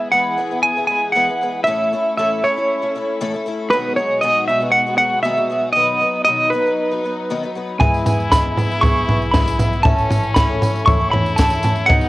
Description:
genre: indie folk with a building arrangement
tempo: 117 BPM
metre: 4/4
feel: straight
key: E major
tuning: A4 = 440 Hz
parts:
  - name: semi-hollow electric guitar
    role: melody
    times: 0.0-12.1 s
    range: B4 to C#6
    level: -17 LUFS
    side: right 1 dB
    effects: tremolo, cassette tape
  - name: picked twelve-string acoustic guitar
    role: accompaniment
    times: 0.0-12.1 s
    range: A2 to B4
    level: -26 LUFS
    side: left 4 dB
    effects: analog chorus, cassette tape
  - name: dark chamber string section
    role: sustained chords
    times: 0.0-12.1 s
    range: B2 to G#4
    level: -28 LUFS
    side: left 1 dB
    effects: cassette tape
  - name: stopped French horn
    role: second line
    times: 7.8-12.1 s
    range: C#4 to E4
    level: -25 LUFS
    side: left 3 dB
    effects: cassette tape
  - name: felt-muted upright piano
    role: accompaniment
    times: 7.8-12.1 s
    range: A1 to E5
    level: -26 LUFS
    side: right 1 dB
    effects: cassette tape
  - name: upright bass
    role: bass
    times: 7.8-12.1 s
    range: A1 to E2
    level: -27 LUFS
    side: equal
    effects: none
  - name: compact cocktail drum kit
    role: drums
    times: 7.8-12.0 s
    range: kick drum, snare drum, toms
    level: -17 LUFS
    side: equal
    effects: cassette tape
  - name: tambourine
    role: percussion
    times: 7.9-12.1 s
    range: none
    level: -36 LUFS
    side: right 4 dB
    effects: none
room: small room ambience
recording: home recording on cassette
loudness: -15 LUFS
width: side -18 dB against mid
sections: 0.0-12.1 A section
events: none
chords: 0.0 E; 1.7 A; 3.7 G#m7/B; 5.8 B; 7.8 E; 9.9 A

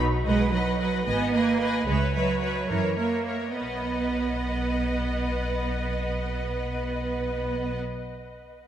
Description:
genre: quick classical-period movement for string orchestra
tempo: 67-75 BPM (dotted quarters)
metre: 6/8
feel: straight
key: B major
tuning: A4 = 439 Hz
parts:
  - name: clear symphonic viola section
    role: accompaniment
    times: 0.0-7.8 s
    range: A#4 to B4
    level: -31 LUFS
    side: equal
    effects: none
  - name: rich symphonic cello section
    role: bass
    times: 0.0-7.8 s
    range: E3 to B3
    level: -28 LUFS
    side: right 5 dB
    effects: none
  - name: warm symphonic double bass section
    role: bass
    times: 0.0-7.8 s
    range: G#1 to F#2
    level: -30 LUFS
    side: right 1 dB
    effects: none
  - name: rich symphonic violin section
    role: second line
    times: 0.2-7.8 s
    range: C#5 to D#5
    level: -34 LUFS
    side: left 2 dB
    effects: none
  - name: rich symphonic violin section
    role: melody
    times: 0.3-7.8 s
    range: E5 to G#5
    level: -38 LUFS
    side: left 5 dB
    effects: none
room: wet cathedral reverb, RT60 5.5 s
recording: in a vast, echoing space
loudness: -24 LUFS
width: side -10 dB against mid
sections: 0.3-3.6 A section; 3.6-7.0 B section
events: slowing down 0.0-3.6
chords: 0.3 B; 1.1 G#m; 1.9 C#m7; 2.7 F#7; 3.6 B

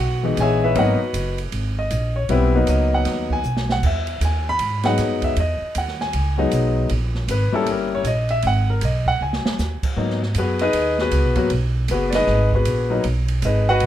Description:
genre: jazz piano trio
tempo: 156 BPM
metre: 4/4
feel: swing 63% on 8ths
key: G# minor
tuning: A4 = 439 Hz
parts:
  - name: clear grand piano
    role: melody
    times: 0.0-13.9 s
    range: E3 to B5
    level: -20 LUFS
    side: left 2 dB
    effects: none
  - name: upright bass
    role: bass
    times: 0.0-13.9 s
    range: F#1 to G#2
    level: -21 LUFS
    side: right 1 dB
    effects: none
  - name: open jazz drum kit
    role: drums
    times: 0.4-13.9 s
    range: crash cymbal, hi-hat, kick drum, ride cymbal, snare drum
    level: -29 LUFS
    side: right 3 dB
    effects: none
room: light reverb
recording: minimal, uncompressed stereo recording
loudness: -18 LUFS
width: side -12 dB against mid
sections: 0.0-10.0 A section; 10.0-13.9 B section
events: drum fill 3.4-3.8, 9.2-9.6; grand piano solo 10.0-13.9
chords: 0.0 C#m7; 0.8 G#m7; 3.8 Emaj7; 6.9 Gdim7; 8.4 G#m; 10.0 G#m7

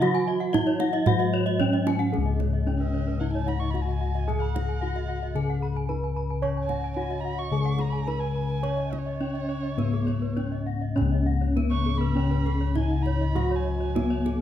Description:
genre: Balinese gamelan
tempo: 100-115 BPM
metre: 4/4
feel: straight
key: Db slendro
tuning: A4 = 441 Hz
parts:
  - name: gamelan-type bronze metallophone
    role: melody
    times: 0.0-14.4 s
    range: Cb4-45c to Db5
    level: -29 LUFS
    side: right 1 dB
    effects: none
  - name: gamelan-type bronze metallophone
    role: accompaniment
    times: 0.0-2.1, 6.4-14.4 s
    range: Db3 to Db4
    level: -33 LUFS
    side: right 1 dB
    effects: none
  - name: gamelan-type bronze metallophone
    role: arpeggios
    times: 0.0-14.3 s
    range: Ab4+25c to Db6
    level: -35 LUFS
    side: left 7 dB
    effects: none
  - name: gamelan-type bronze metallophone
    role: arpeggios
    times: 0.0-14.4 s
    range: Ab4+25c to Cb6-45c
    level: -37 LUFS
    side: right 5 dB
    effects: none
  - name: gamelan-type bossed gongs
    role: bass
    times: 0.0-14.4 s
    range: Db2 to Db5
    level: -26 LUFS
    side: left 3 dB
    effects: none
  - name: kendang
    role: percussion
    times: 0.0-14.4 s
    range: none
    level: -32 LUFS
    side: right 8 dB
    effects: none
  - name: dark erhu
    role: second line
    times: 2.8-14.4 s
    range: Db5 to Db6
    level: -37 LUFS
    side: right 5 dB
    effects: none
room: light reverb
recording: close, detailed microphones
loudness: -23 LUFS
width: side -10 dB against mid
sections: 0.0-2.1 A section; 2.1-11.0 B section; 11.0-14.4 C section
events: none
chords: none

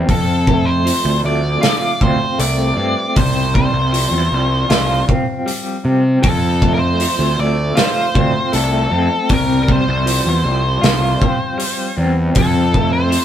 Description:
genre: quiet-loud alternative rock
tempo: 78 BPM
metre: 4/4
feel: straight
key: F major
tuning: A4 = 440 Hz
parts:
  - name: electric guitar through a small old amp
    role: arpeggios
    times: 0.0-13.2 s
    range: F2 to F4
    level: -20 LUFS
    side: equal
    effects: tremolo
  - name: fuzz picked electric bass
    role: bass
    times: 0.0-13.2 s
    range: C2 to C3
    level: -17 LUFS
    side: equal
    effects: overdrive
  - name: octave-fuzz lead guitar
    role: melody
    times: 0.1-13.2 s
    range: A4 to D5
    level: -20 LUFS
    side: equal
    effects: distortion
  - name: loose indie drum kit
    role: drums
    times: 0.1-13.2 s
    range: hi-hat, kick drum, snare drum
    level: -18 LUFS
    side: equal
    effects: none
room: light reverb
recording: band playing live in one room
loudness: -13 LUFS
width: side -10 dB against mid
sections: 0.0-13.2 A section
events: none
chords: 0.1 F; 3.2 Csus4; 6.2 F; 9.3 Csus4; 12.4 F

